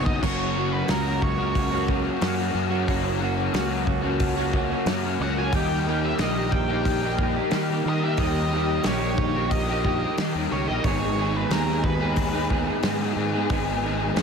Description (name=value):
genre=rock, shoegaze and dream pop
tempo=90 BPM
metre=4/4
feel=straight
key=unclear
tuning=A4 = 440 Hz
part: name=octave-fuzz lead guitar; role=melody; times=0.0-12.5 s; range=A#4 to G#5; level=-31 LUFS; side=right 3 dB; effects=distortion, tape echo
part: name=direct-recorded clean electric guitar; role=riff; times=0.0-14.2 s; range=F#2 to G#4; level=-28 LUFS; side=right 14 dB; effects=reverse reverb
part: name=overdriven electric guitar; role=riff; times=0.0-14.2 s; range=F#2 to G#4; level=-27 LUFS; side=left 9 dB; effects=ensemble chorus
part: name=fuzz fingered electric bass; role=bass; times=0.0-14.2 s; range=F#1 to D#3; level=-28 LUFS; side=equal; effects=overdrive
part: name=loose indie drum kit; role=drums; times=0.1-14.2 s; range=crash cymbal, hi-hat, kick drum, snare drum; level=-28 LUFS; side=equal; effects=none
room=light reverb, small room ambience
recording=none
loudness=-22 LUFS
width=side -6 dB against mid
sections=0.2-14.2 A section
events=none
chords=0.2 F#; 5.5 D#; 10.8 G#m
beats=| 0.22 0.88 1.55 2.21 | 2.88 3.54 4.20 4.87 | 5.53 6.20 6.86 7.53 | 8.19 8.85 9.52 10.18 | 10.85 11.51 12.17 12.84 | 13.50 14.16